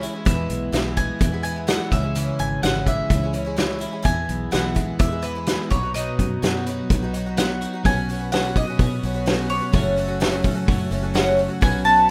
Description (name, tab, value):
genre	folk rock and heartland rock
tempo	127 BPM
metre	4/4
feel	straight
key	unclear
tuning	A4 = 440 Hz
part	picked twelve-string acoustic guitar	accompaniment	0.0-12.1 s	E2 to F#4	-31 LUFS	equal	none
part	twelve-string electric guitar	riff	0.0-12.1 s	E2 to F#4	-30 LUFS	equal	none
part	fingered electric bass	bass	0.0-12.1 s	F#1 to B2	-30 LUFS	equal	none
part	loose indie drum kit	drums	0.0-12.0 s	hi-hat, kick drum, snare drum	-24 LUFS	equal	none
part	bowl-back mandolin	melody	0.3-12.1 s	B4 to A5	-27 LUFS	equal	slapback echo
part	tonewheel organ	sustained chords	7.8-12.1 s	C#4 to B4	-42 LUFS	equal	none
room	little or no reverb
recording	rough home demo mix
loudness	-22 LUFS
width	mono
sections	0.0-7.8 A section; 7.8-12.1 B section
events	none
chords	0.3 E; 1.9 C#m; 4.1 E; 5.7 B; 7.8 Bsus2; 9.7 F#m